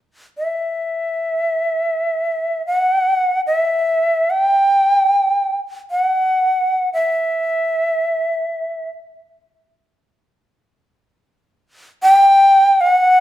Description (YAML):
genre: japanese traditional, Japanese chamber music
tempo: free time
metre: none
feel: none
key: E minor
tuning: A4 = 440 Hz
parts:
  - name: bright shakuhachi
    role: solo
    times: 0.4-13.2 s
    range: E5 to G5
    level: -14 LUFS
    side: equal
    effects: none
room: moderate recital hall reverb, RT60 1.4 s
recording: minimal, uncompressed stereo recording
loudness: -14 LUFS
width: side -13 dB against mid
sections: 0.0-13.2 A section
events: none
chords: none